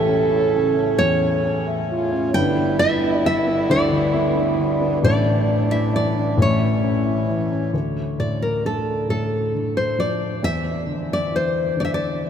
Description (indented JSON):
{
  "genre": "acoustic folk-pop ballad",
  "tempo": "44 BPM (dotted quarters)",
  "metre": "6/8",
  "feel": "straight",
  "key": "unclear",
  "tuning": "A4 = 439 Hz",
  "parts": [
    { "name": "nylon-string guitar", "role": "melody", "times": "0.0-12.3 s", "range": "A4 to G5", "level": "-23 LUFS", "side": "equal", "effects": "none" },
    { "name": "mellow French horn", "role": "second line", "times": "0.0-7.2 s", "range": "D4 to A4", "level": "-23 LUFS", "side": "right 4 dB", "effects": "none" },
    { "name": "dark baby grand piano", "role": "accompaniment", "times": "0.0-12.3 s", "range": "G1 to E5", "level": "-22 LUFS", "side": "left 1 dB", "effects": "none" },
    { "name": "hand-pumped harmonium", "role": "sustained chords", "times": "0.0-7.7 s", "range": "G2 to D4", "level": "-28 LUFS", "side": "left 2 dB", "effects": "none" }
  ],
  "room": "wet cathedral reverb, RT60 6.9 s",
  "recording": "in a vast, echoing space",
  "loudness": "-18 LUFS",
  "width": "side -8 dB against mid",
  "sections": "0.0-7.7 A section; 7.7-12.3 B section",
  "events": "none",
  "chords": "0.0 A; 2.3 G; 5.0 Asus4; 6.4 A; 7.7 Dm; 10.4 E7(no3)",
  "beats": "0.99 | 2.33 3.68 | 5.02 6.37 | 7.73 9.08 | 10.43 11.78"
}